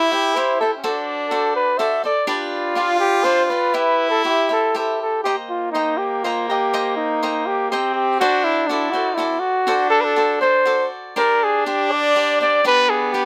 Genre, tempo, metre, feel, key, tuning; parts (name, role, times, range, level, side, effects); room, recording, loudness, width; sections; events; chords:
mexican folk, mariachi; 122 BPM; 3/4; rubato; C major, C minor from 5.3 s; A4 = 440 Hz
mellow trumpet; melody; 0.0-13.3 s; D4 to E5; -20 LUFS; equal
warm trumpet; second line; 0.0-13.3 s; Bb3 to F4; -25 LUFS; equal
cavaquinho; accompaniment; 0.0-13.3 s; D4 to Bb5; -27 LUFS; equal
little or no reverb; close, detailed microphones; -19 LUFS; mono
0.0-5.3 A section; 5.3-13.3 B section
0.0 C; 0.8 D7; 2.3 G; 3.7 C; 5.3 Cm7; 8.2 D7; 11.2 Gsus4; 12.6 G